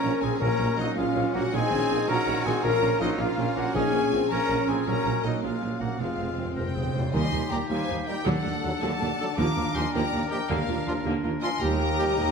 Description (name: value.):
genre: cinematic, heroic adventure film score.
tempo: 107 BPM (dotted quarters).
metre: 6/8.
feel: straight.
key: Eb major from 7.1 s.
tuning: A4 = 440 Hz.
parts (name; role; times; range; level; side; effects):
rich symphonic violin section; melody; 0.0-12.3 s; Eb5 to D6; -35 LUFS; left 5 dB; none.
clear oboe; second line; 0.0-12.3 s; Eb4 to Bb4; -36 LUFS; equal; none.
mellow hollow silver concert flute; second line; 0.0-12.3 s; C5 to Bb5; -35 LUFS; left 2 dB; none.
warm symphonic violin section; second line; 0.0-12.3 s; A4 to Bb5; -37 LUFS; left 4 dB; none.
warm symphonic viola section; accompaniment; 0.0-12.3 s; D3 to Bb4; -34 LUFS; right 1 dB; none.
dark trombone section; sustained chords; 0.0-12.0 s; Bb2 to Eb4; -36 LUFS; right 4 dB; none.
mellow French horn section; sustained chords; 0.0-12.0 s; G3 to Bb4; -30 LUFS; left 6 dB; none.
mellow trumpet; stabs; 0.0-12.0 s; Gb3 to A4; -35 LUFS; right 2 dB; none.
clear tuba; bass; 0.0-12.3 s; F1 to Eb2; -34 LUFS; right 4 dB; none.
dark symphonic double bass section; bass; 0.0-12.3 s; F1 to Eb2; -33 LUFS; right 4 dB; none.
rich symphonic cello section; bass; 0.0-12.3 s; Eb2 to Gb4; -33 LUFS; right 3 dB; none.
timpani; percussion; 0.4-11.0 s; F2 to Eb3; -33 LUFS; left 1 dB; none.
clear clarinet; second line; 6.6-12.3 s; D4 to C5; -35 LUFS; left 3 dB; none.
room: wet scoring stage reverb, RT60 1.5 s.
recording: none.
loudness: -23 LUFS.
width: side -5 dB against mid.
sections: 0.0-7.1 A section; 7.1-12.3 B section.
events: timpani fill 6.0-7.1.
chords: 0.4 Gb/Bb; 1.5 Ab/Bb; 2.6 Bbm; 3.8 Db/Bb; 4.9 Gb/Bb; 6.0 Fm; 7.1 Eb; 8.3 D/Eb; 9.4 Gm7/Eb; 10.5 Bb/Eb; 11.6 Eb.